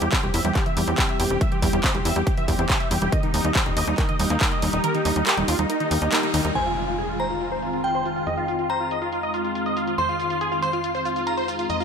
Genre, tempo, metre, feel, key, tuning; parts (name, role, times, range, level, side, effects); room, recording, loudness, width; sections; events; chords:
uplifting trance; 140 BPM; 4/4; straight; F minor; A4 = 439 Hz
big supersaw lead; melody; 0.0-11.8 s; Eb4 to E5; -26 LUFS; right 1 dB; phaser, sidechain pumping, low-pass filter, dub echo
analog string pad; sustained chords; 0.0-11.8 s; Eb3 to G4; -30 LUFS; left 1 dB; ensemble chorus, sidechain pumping
analog pluck; arpeggios; 0.0-6.5 s; Eb3 to E5; -30 LUFS; right 3 dB; chorus, sidechain pumping, ping-pong delay
tight sequencer bass; bass; 0.0-11.8 s; Eb1 to F2; -28 LUFS; equal; tube saturation, sidechain pumping
big-room dance drum kit; drums; 0.0-11.8 s; crash cymbal, handclaps, hi-hat, shaker; -27 LUFS; equal; low-pass filter on hats, studio reverb, low-pass filter on snare, low-pass filter on cymbals, low-pass filter on perc
electronic kick drum; drums; 0.1-4.5 s; -24 LUFS; equal; studio reverb
glassy synth bell; second line; 6.6-11.8 s; G5 to C6; -27 LUFS; left 1 dB; chorus, ping-pong delay
impact; sound effects; 6.6-8.3 s; -36 LUFS; equal
light reverb, digital ambience; -20 LUFS; side -6 dB against mid
0.0-6.6 A section; 6.6-11.8 B section
filter sweep on synth pluck 0.0-6.6; filter sweep on analog synth pad 0.0-6.6; kick drops out 4.8-6.6; band accent 6.1; impact 6.6-8.3; filter sweep on drum 6.6-11.8; filter sweep on supersaw synth 6.6-11.8
0.0 C/E; 3.1 Eb; 6.6 Fm7